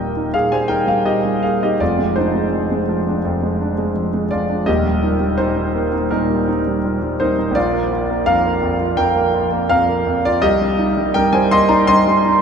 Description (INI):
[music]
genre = classical, romantic character piece for solo piano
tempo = 83 BPM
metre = 4/4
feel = rubato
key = Eb major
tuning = A4 = 442 Hz
[part]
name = warm concert grand piano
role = solo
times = 0.0-12.4 s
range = Eb1 to C6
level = -15 LUFS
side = equal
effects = none
[sound]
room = wet cathedral reverb, RT60 6.7 s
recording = in a vast, echoing space, nothing above 11.0 kHz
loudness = -15 LUFS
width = side -6 dB against mid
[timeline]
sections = 0.0-12.4 A section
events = none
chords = 0.0 Eb; 1.8 Ddim/F; 4.7 Eb; 7.6 Bb; 10.4 Cm7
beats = 0.33 1.06 | 1.80 2.52 3.24 3.96 | 4.68 5.40 6.12 6.84 | 7.56 8.28 8.99 9.71 | 10.43 11.15 11.88